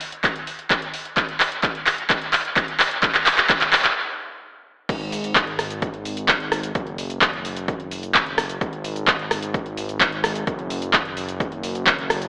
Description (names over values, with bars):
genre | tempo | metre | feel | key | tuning
EDM, festival progressive house | 129 BPM | 4/4 | straight | unclear | A4 = 440 Hz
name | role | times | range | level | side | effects
big-room dance drum kit | drums | 0.0-12.3 s | crash cymbal, handclaps, hi-hat, rim click, shaker | -19 LUFS | equal | none
electronic kick drum | drums | 0.2-12.0 s | none | -27 LUFS | equal | overdrive
fat analog bass | bass | 4.9-12.3 s | F#1 to G#1 | -29 LUFS | equal | sidechain pumping
room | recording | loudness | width
wet lush hall reverb, RT60 1.7 s | AM radio sound | -19 LUFS | side -34 dB against mid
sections
0.0-4.9 A section; 4.9-12.3 B section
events
build-up 0.0-4.9; drum fill 0.0-4.0; stop 4.0-4.9; drop 4.9-12.3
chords
none